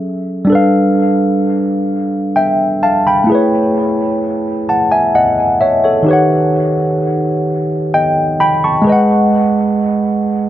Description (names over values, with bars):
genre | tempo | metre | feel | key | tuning
R&B | 43 BPM (dotted quarters) | 6/8 | straight | unclear | A4 = 440 Hz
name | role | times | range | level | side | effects
tine electric piano | solo | 0.0-10.5 s | D#3 to C#6 | -11 LUFS | equal | dub echo
room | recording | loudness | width
moderate spring reverb, RT60 1.2 s, digital ambience | echo-heavy mix | -11 LUFS | side -12 dB against mid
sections
0.0-10.5 A section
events
none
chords
0.5 G9; 3.3 Amaj9; 6.1 D#7alt; 8.9 G#m7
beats
| 0.49 1.89 | 3.29 4.68 | 6.08 7.47 | 8.87 10.26